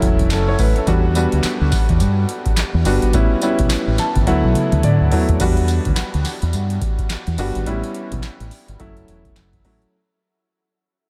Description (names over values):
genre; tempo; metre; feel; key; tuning
R&B, new jack swing; 106 BPM; 4/4; swing 60% on 16ths; E dorian; A4 = 440 Hz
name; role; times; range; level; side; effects
clear concert grand piano; accompaniment; 0.0-9.9 s; F#3 to A5; -23 LUFS; equal; none
deep dub fingered electric bass; bass; 0.0-9.8 s; E1 to D3; -21 LUFS; equal; none
booming analog drum machine; drums; 0.0-9.9 s; crash cymbal, handclaps, hi-hat, kick drum, snare drum, tambourine, toms; -23 LUFS; equal; none
room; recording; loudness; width
light reverb; none; -18 LUFS; mono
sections
0.0-5.4 A section; 5.4-9.9 B section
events
grand piano fill 3.7-5.4; drum fill 4.3-5.4; fade-out 5.4-9.9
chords
0.0 F#m7; 0.9 Em7; 3.1 A7; 4.3 D6; 5.4 Em7; 7.7 A7; 8.8 F#m7